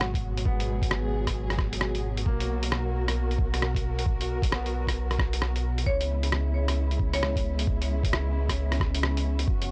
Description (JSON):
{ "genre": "future garage", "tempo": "133 BPM", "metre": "4/4", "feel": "swing 61% on 16ths", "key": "unclear", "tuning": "A4 = 439 Hz", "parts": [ { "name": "bright upright piano", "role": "accompaniment", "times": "0.0-9.5 s", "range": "G#3 to E4", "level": "-44 LUFS", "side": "equal", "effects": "sidechain pumping, analog delay" }, { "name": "dark studio string section", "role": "sustained chords", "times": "0.0-9.7 s", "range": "B2 to A#4", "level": "-36 LUFS", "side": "equal", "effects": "sidechain pumping" }, { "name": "dark detuned saw bass", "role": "bass", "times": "0.0-9.7 s", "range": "F#1 to C#2", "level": "-31 LUFS", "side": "equal", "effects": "tube saturation, sidechain pumping" }, { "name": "lo-fi sampler-style drum kit", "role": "drums", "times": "0.0-9.7 s", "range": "hi-hat, rim click", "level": "-33 LUFS", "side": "equal", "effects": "none" }, { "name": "electronic kick drum", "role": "drums", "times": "0.1-9.6 s", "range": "none", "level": "-30 LUFS", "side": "equal", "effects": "none" }, { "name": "marimba with medium hard mallets", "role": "melody", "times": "5.9-7.8 s", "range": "C#5", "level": "-39 LUFS", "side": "equal", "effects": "tape echo" } ], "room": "little or no reverb", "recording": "dry, gritty hardware recording, transformer saturation, cassette tape", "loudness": "-27 LUFS", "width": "mono", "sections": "0.0-9.7 A section", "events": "kick drops out 5.4-5.9", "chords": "0.0 G#m7; 2.3 B5; 5.9 C#m7" }